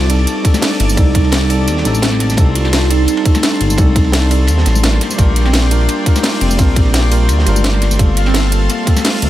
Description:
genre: liquid drum and bass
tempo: 171 BPM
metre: 4/4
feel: swing 53% on 16ths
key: C dorian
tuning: A4 = 441 Hz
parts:
  - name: hollow clarinet-like synth lead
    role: melody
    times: 0.0-9.3 s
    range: Bb3 to G4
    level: -21 LUFS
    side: right 1 dB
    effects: phaser, lush chorus, dub echo
  - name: mellow tine electric piano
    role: accompaniment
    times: 0.0-9.3 s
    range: G3 to D5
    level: -20 LUFS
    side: equal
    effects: medium stereo tremolo, digital delay
  - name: lush unison pad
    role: sustained chords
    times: 0.0-9.3 s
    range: D5 to D6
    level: -24 LUFS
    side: left 1 dB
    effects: chorus, sidechain pumping
  - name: smooth gliding synth bass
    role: bass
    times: 0.0-9.3 s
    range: F1 to Eb2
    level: -14 LUFS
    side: equal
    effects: none
  - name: crunchy breakbeat drum kit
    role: drums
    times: 0.0-9.3 s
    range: hi-hat, ride cymbal, snare drum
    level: -25 LUFS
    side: equal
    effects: high-pass filter on cymbals, high-pass filter on hats, high-pass filter on snare, high-pass filter on room
  - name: drum and bass drum kit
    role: drums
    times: 0.1-9.3 s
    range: hi-hat, ride cymbal, snare drum, tambourine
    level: -19 LUFS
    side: equal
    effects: overdrive
  - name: electronic kick drum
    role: drums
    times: 0.4-8.9 s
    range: none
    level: -12 LUFS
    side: equal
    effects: overdrive
  - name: congas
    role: percussion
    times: 0.5-9.0 s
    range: none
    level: -25 LUFS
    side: left 5 dB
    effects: none
room: studio reverb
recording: none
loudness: -10 LUFS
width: side -14 dB against mid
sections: 0.0-9.3 A section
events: none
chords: 0.0 Cm69; 5.0 Bb6; 8.0 Gm11

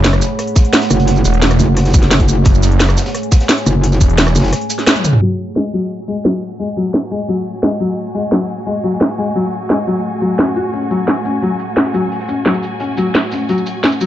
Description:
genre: dark technical drum and bass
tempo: 174 BPM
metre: 4/4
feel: straight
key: F# minor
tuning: A4 = 438 Hz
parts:
  - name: deep dark ambient pad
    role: sustained chords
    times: 0.0-14.1 s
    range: A3 to G#5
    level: -23 LUFS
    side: right 2 dB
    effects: chorus, built-in reverb, sidechain pumping
  - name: wide detuned saw bass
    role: bass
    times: 0.0-4.3 s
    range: E1 to F#1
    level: -13 LUFS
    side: equal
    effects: chorus, overdrive, sidechain pumping
  - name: crunchy breakbeat drum kit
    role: drums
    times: 0.0-5.1, 10.7-14.1 s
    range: hi-hat, snare drum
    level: -30 LUFS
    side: equal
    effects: high-pass filter on hats, high-pass filter on snare, high-pass filter on room
  - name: drum and bass drum kit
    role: drums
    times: 0.0-14.1 s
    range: hi-hat, rim click, shaker, snare drum, toms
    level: -14 LUFS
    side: equal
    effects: low-pass filter on snare, low-pass filter on perc, low-pass filter on hats, low-pass filter on toms
  - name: electronic kick drum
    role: drums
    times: 0.6-4.1 s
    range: none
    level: -10 LUFS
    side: equal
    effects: none
  - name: metallic wobble bass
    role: bass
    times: 0.9-4.5 s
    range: F#1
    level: -12 LUFS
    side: equal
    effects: distortion, chorus
  - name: felt-muted upright piano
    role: arpeggios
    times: 5.2-14.1 s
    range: F#3 to F#4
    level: -18 LUFS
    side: left 3 dB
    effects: sidechain pumping, dub echo
  - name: rich chamber string section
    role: texture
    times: 5.2-14.1 s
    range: A3 to G#5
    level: -24 LUFS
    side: right 1 dB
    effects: sidechain pumping
room: light reverb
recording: dark, warm production, low-pass filter, nothing above 7.9 kHz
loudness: -12 LUFS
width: side -12 dB against mid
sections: 0.0-5.2 A section; 5.2-14.1 B section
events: drop 0.0-5.2; band accent 4.9; drum fill 5.0; filter sweep 5.2-14.1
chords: 0.0 F#madd9

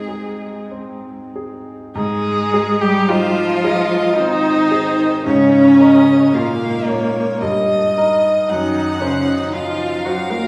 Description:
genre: classical, slow romantic movement for piano quartet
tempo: 47-58 BPM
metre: 3/4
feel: rubato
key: Ab major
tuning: A4 = 440 Hz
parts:
  - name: rich violin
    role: melody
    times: 0.0-10.5 s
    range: Ab4 to Gb5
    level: -23 LUFS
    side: equal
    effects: none
  - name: rich cello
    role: second line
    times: 0.0-10.5 s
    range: Bb2 to Bb3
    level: -24 LUFS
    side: equal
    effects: none
  - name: bright baby grand piano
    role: accompaniment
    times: 0.0-10.5 s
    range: Gb2 to C5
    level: -26 LUFS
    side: equal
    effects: none
  - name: rich viola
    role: accompaniment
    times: 0.0-10.5 s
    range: Bb3 to Bb4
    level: -18 LUFS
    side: equal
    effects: none
room: wet scoring stage reverb, RT60 1.9 s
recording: heard from further back in the room, small room ambience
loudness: -16 LUFS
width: mono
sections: 0.0-1.9 A section; 1.9-10.5 A section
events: none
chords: 0.0 Ab; 5.2 Bbm7/Ab; 7.4 Eb/G; 8.5 Ab7/Gb (rootless)

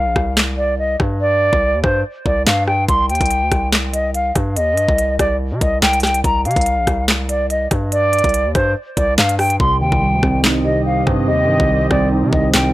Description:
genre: hip hop, drill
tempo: 143 BPM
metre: 4/4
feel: half-time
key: C minor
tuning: A4 = 440 Hz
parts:
  - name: hollow concert flute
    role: melody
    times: 0.0-12.7 s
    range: C5 to C6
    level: -17 LUFS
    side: equal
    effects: low-pass filter, analog delay
  - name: distorted 808-style bass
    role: bass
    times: 0.0-12.7 s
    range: Bb1 to C3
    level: -20 LUFS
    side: equal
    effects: distortion
  - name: drill drum kit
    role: drums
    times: 0.2-12.6 s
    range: handclaps, hi-hat, kick drum, rim click, snare drum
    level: -18 LUFS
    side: equal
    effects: none
  - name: mellow tine electric piano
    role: accompaniment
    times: 9.6-12.7 s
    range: C3 to Eb4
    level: -18 LUFS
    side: right 1 dB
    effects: low-pass filter
  - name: sweeping resonant pad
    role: sustained chords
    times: 9.6-12.7 s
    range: C4 to Eb5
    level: -25 LUFS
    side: right 2 dB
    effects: wide subtle chorus
room: little or no reverb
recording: dry, gritty hardware recording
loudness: -14 LUFS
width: side -16 dB against mid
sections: 0.0-12.7 A section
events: break 0.0-2.9; hi-hats muted 9.6-12.7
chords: 0.0 N.C.; 2.9 Cm; 6.2 Bb (rootless); 9.6 Cm

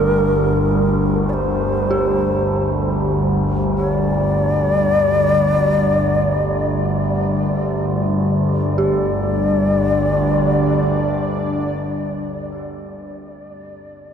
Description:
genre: dark ambient drone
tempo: free time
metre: none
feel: none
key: unclear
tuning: A4 = 440 Hz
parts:
  - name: mellow long shakuhachi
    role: melody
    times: 0.0-11.9 s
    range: Bb4 to D5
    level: -21 LUFS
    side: left 2 dB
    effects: diffuse ambient delay
  - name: sweeping resonant pad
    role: sustained chords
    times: 0.0-12.5 s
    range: G2 to D5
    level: -20 LUFS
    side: equal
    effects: chorus
  - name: dark detuned synth bell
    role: arpeggios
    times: 0.0-14.1 s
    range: G4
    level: -27 LUFS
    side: right 2 dB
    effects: chorus, diffuse ambient delay
  - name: overtone-sweeping drone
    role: drone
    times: 0.0-11.9 s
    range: G1 to D2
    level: -22 LUFS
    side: right 1 dB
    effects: chorus, built-in reverb
  - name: bronze singing bowl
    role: texture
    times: 0.0-8.9 s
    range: none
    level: barely audible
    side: none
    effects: none
room: wet cathedral reverb, RT60 5.4 s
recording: in a vast, echoing space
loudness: -16 LUFS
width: side -8 dB against mid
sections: 0.0-8.8 A section; 8.8-13.8 B section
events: none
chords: 0.0 G5

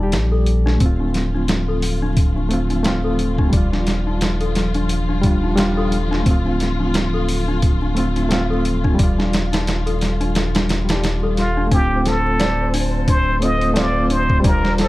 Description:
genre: trip hop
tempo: 88 BPM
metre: 4/4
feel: swing 57% on 16ths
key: D phrygian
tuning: A4 = 440 Hz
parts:
  - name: overdriven reed electric piano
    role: accompaniment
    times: 0.0-14.9 s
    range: G3 to D5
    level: -23 LUFS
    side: equal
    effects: fast tremolo
  - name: small celesta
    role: arpeggios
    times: 0.0-14.9 s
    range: D4 to D5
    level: -26 LUFS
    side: left 4 dB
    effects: tape echo
  - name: soft dub sub bass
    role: bass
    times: 0.0-14.9 s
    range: D1 to Bb1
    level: -21 LUFS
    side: equal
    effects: none
  - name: boom bap sampler-style drum kit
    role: drums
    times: 0.1-14.9 s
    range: hi-hat, kick drum, snare drum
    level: -20 LUFS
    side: equal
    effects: none
  - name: dark studio string section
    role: sustained chords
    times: 0.8-14.9 s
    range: F3 to C5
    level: -28 LUFS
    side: left 2 dB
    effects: vintage 12-bit sampler grit
  - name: trumpet with plunger mute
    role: melody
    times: 11.4-14.9 s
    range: F4 to Eb5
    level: -20 LUFS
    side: equal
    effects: vintage 12-bit sampler grit, tape echo
room: studio ambience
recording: vinyl crackle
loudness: -16 LUFS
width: side -18 dB against mid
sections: 0.0-11.7 A section; 11.7-14.9 B section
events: none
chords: 0.0 Ebmaj7; 0.8 Dm7; 3.5 Ebmaj7; 6.3 Dm7; 9.0 Ebmaj7; 11.7 Dm7

